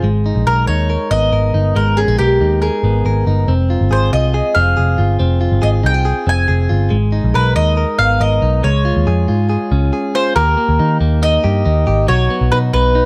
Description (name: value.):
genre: jangly indie pop.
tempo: 139 BPM.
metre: 4/4.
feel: straight.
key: unclear.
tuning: A4 = 440 Hz.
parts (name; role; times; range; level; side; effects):
direct-recorded clean electric guitar; arpeggios; 0.0-13.1 s; F#3 to Bb4; -22 LUFS; equal; analog delay.
vintage muted picked electric bass; bass; 0.0-13.0 s; F1 to Eb3; -17 LUFS; equal; none.
mandolin; melody; 0.5-13.1 s; G4 to Ab5; -19 LUFS; equal; none.
room: light reverb.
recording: none.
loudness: -15 LUFS.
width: mono.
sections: 0.0-10.4 A section; 10.4-13.1 B section.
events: none.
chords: 0.0 Abmadd9; 3.5 Fm; 6.9 Abmadd9; 8.6 Db; 10.4 Eb; 12.1 B.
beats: | 0.04 0.47 0.90 1.33 | 1.76 2.19 2.62 3.05 | 3.48 3.92 4.34 4.78 | 5.20 5.63 6.06 6.49 | 6.92 7.35 7.78 8.21 | 8.64 9.07 9.50 9.93 | 10.36 10.79 11.22 11.65 | 12.09 12.52 12.95.